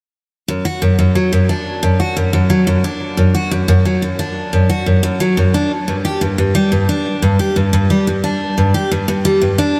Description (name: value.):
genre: folktronica.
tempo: 89 BPM.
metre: 4/4.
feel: straight.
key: unclear.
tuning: A4 = 438 Hz.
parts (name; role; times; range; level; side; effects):
picked steel-string acoustic guitar; solo; 0.5-9.8 s; F#2 to G4; -15 LUFS; equal; tape echo.
room: moderate huge ambient reverb, RT60 4.2 s.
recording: dreamy mix soaked in reverb.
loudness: -15 LUFS.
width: mono.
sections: 0.3-9.8 A section.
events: none.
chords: none.